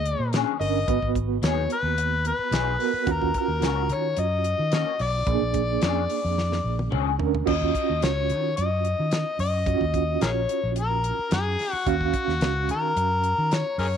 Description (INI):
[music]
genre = straight-eighth soul blues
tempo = 109 BPM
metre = 4/4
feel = straight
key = Eb minor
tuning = A4 = 440 Hz
[part]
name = overdriven harmonica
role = melody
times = 0.0-14.0 s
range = Gb4 to Eb5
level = -26 LUFS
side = left 4 dB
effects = slapback echo
[part]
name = overdriven reed electric piano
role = accompaniment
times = 0.0-14.0 s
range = D3 to F5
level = -29 LUFS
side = right 15 dB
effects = tremolo
[part]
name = fingered electric bass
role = bass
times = 0.0-14.0 s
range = G1 to Eb3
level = -27 LUFS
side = equal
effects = none
[part]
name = damped 70s drum kit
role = drums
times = 0.1-13.9 s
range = crash cymbal, hi-hat, kick drum, snare drum, toms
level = -29 LUFS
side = equal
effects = none
[part]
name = electric guitar through a small old amp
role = stabs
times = 0.3-7.1 s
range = F3 to Ab4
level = -30 LUFS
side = left 14 dB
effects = ensemble chorus
[sound]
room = moderate spring reverb, RT60 2.2 s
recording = 1960s-style stereo with parts hard left and right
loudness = -22 LUFS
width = side -8 dB against mid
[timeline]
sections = 0.0-7.5 A section; 7.5-14.0 A section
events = drum fill 6.4-7.5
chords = 0.0 Bb7#9; 0.9 Abm7; 3.1 Ebm7; 5.3 Bb7#9; 7.5 Ebm7